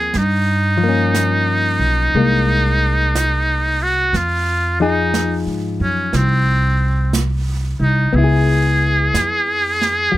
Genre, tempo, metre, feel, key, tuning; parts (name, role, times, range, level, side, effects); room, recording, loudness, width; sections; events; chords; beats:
jazz ballad; 60 BPM; 4/4; swing 66% on 8ths; A4 = 440 Hz
trumpet with metal mute; melody; 0.0-10.2 s; C4 to Ab4; -18 LUFS; right 1 dB
hollow-body jazz guitar; accompaniment; 0.0-10.2 s; F3 to Ab4; -21 LUFS; left 5 dB
upright bass; bass; 0.0-10.2 s; Cb2 to Ab2; -18 LUFS; equal
jazz brush drum kit; drums; 0.1-10.2 s; brushed snare drum, hi-hat, snare drum; -27 LUFS; right 4 dB
little or no reverb; close, detailed microphones; -14 LUFS; side -15 dB against mid
0.0-10.2 A section
0.2 Gm7b5; 2.1 Abadd9/C; 4.1 Fm7; 8.1 Dbm7
| 0.15 1.15 2.15 3.15 | 4.14 5.14 6.14 7.14 | 8.13 9.13 10.13